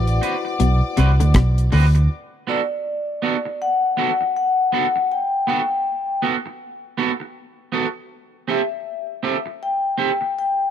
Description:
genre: lovers rock reggae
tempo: 80 BPM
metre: 4/4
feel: swing 61% on 16ths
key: G major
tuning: A4 = 444 Hz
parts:
  - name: vibraphone with soft mallets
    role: melody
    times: 0.0-10.7 s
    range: D5 to G5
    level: -22 LUFS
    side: left 3 dB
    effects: tape echo
  - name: warm studio string section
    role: second line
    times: 0.0-2.1 s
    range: D5 to D6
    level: -30 LUFS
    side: left 3 dB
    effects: none
  - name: tine electric piano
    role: accompaniment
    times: 0.0-2.1 s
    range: E4 to C5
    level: -32 LUFS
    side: left 5 dB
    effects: medium stereo tremolo, slapback echo
  - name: twangy electric guitar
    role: riff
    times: 0.0-1.9 s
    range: B2 to D3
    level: -24 LUFS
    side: left 6 dB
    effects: none
  - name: vintage muted fingered electric bass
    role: bass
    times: 0.0-2.1 s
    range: A1 to D2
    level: -15 LUFS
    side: equal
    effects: none
  - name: deep reggae drum kit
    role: drums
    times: 0.1-2.1 s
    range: hi-hat, kick drum, rim click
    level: -21 LUFS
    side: equal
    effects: none
  - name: electric guitar at the edge of break-up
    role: stabs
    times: 0.2-10.2 s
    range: B3 to B4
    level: -23 LUFS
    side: right 6 dB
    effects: wide subtle chorus
room: little or no reverb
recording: dry, close 1970s-style studio recording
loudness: -18 LUFS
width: side -9 dB against mid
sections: 0.0-2.1 A section; 2.1-10.7 B section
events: none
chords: 0.0 D13; 2.1 Gmaj9 (rootless); 8.1 Am7

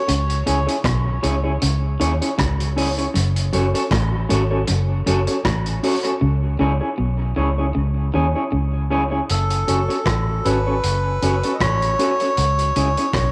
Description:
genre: dub reggae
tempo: 78 BPM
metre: 4/4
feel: swing 55% on 16ths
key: F# dorian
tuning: A4 = 440 Hz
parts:
  - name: melodica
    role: melody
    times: 0.0-0.1, 9.3-13.3 s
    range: A4 to D#5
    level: -26 LUFS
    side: equal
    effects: cassette tape, dub echo
  - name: electric guitar at the edge of break-up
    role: riff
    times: 0.1-8.8 s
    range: F#2 to D#3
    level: -29 LUFS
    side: equal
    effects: none
  - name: vintage muted fingered electric bass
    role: bass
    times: 0.1-13.3 s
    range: F#1 to D#2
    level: -23 LUFS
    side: equal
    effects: none
  - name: vintage drum kit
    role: drums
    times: 0.1-13.3 s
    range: hi-hat, kick drum, rim click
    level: -28 LUFS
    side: equal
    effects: cassette tape
  - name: mellow electric guitar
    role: accompaniment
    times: 0.5-13.1 s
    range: C#4 to C#5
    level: -25 LUFS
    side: equal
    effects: cassette tape, dub echo
room: light reverb, small room reverb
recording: home recording on cassette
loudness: -20 LUFS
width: mono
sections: 0.0-9.3 A section; 9.3-13.3 B section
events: break 0.1-9.3; part muted 6.2-9.3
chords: 0.1 C#m; 3.1 F#m; 6.2 C#m; 9.3 F#m; 12.4 C#m

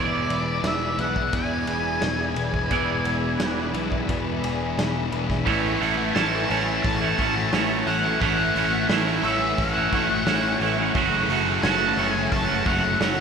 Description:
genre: rock, shoegaze and dream pop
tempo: 88 BPM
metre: 4/4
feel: straight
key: A major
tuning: A4 = 438 Hz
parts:
  - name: octave-fuzz lead guitar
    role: melody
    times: 0.0-13.2 s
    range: D5 to A5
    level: -27 LUFS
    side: left 2 dB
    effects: distortion, tape echo
  - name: string machine, cellos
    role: sustained chords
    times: 0.0-13.2 s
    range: A3 to C#6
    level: -32 LUFS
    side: right 1 dB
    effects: phaser, ensemble chorus
  - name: electric guitar through a small old amp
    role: arpeggios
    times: 0.0-13.2 s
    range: E3 to G#4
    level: -32 LUFS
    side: equal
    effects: analog chorus, tape echo
  - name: biting overdriven guitar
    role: riff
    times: 0.0-13.2 s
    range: A2 to D5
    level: -26 LUFS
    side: right 10 dB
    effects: reverse reverb
  - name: thick fuzz guitar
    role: riff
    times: 0.0-13.2 s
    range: E2 to A3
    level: -29 LUFS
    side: left 8 dB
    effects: distortion, wide subtle chorus
  - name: picked electric bass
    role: bass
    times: 0.0-13.2 s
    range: E1 to E2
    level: -30 LUFS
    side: equal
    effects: none
  - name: raw garage drum kit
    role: drums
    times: 0.3-13.2 s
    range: hi-hat, kick drum, ride cymbal, snare drum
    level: -29 LUFS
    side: right 1 dB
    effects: none
  - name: tight distorted guitar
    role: riff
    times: 5.5-13.2 s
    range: F#2 to A3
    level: -29 LUFS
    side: right 2 dB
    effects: distortion
room: wet lush hall reverb, RT60 2.2 s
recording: dreamy mix soaked in reverb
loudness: -20 LUFS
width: side -6 dB against mid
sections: 0.0-5.5 A section; 5.5-13.2 B section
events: none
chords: 0.0 E7; 5.5 A6; 10.9 F#m7

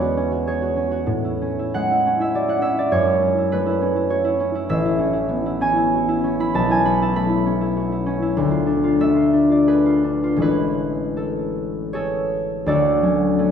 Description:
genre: classical, solo harp piece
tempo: 77-104 BPM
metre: 3/4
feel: rubato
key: A major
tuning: A4 = 440 Hz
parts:
  - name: concert harp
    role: solo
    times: 0.0-13.5 s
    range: A1 to B5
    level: -17 LUFS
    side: equal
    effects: none
room: wet recital hall reverb, RT60 1.6 s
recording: heard from further back in the room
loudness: -17 LUFS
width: side -8 dB against mid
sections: 0.0-12.7 A section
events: none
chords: 0.0 E69; 1.1 Amaj9; 2.9 F#m7; 4.7 Amaj9; 6.5 B9sus4; 8.4 Dm6; 10.4 Amaj7; 12.7 Dmaj7

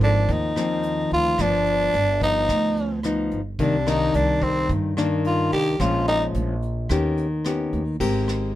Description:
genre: bossa nova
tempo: 109 BPM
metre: 4/4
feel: straight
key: C minor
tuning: A4 = 437 Hz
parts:
  - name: growling tenor saxophone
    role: melody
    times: 0.0-6.2 s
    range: C4 to G4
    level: -22 LUFS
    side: equal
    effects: none
  - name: nylon-string guitar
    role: accompaniment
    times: 0.0-8.6 s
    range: G2 to Bb4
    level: -24 LUFS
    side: left 3 dB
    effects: none
  - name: upright bass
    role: bass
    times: 0.0-8.6 s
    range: G1 to G2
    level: -26 LUFS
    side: right 1 dB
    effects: none
  - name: vintage brush drum kit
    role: drums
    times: 0.0-8.4 s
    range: crash cymbal, hi-hat, kick drum, rim click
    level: -32 LUFS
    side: right 1 dB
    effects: none
room: light reverb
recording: minimal, uncompressed stereo recording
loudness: -20 LUFS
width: side -14 dB against mid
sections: 0.0-8.0 A section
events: tenor saxophone solo 0.0-8.6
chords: 0.0 Ab69; 1.4 G7b13; 3.6 Cm9; 5.8 Bbm7; 6.9 Ebaug7; 8.0 Abmaj9

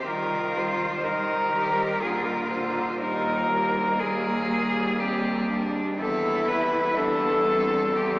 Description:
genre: classical, lyrical piece for cello ensemble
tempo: 61 BPM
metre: 3/4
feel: rubato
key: unclear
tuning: A4 = 440 Hz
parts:
  - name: rich cello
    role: melody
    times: 0.0-8.2 s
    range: G4 to C5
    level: -24 LUFS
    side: equal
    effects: none
  - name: rich cello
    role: second line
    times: 0.0-8.2 s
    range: Bb3 to G4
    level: -30 LUFS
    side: right 1 dB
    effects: none
  - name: rich cello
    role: accompaniment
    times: 0.0-8.2 s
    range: D3 to G3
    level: -33 LUFS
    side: equal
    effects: none
  - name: clear cello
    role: bass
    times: 0.1-8.2 s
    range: Eb2 to Eb3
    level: -30 LUFS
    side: equal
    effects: none
room: wet cathedral reverb, RT60 6.2 s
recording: recorded in a church or concert hall, small speaker sound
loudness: -22 LUFS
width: side -23 dB against mid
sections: 0.0-8.2 A section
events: none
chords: 0.1 Eb; 2.0 Bb; 3.0 Eb; 6.0 Em

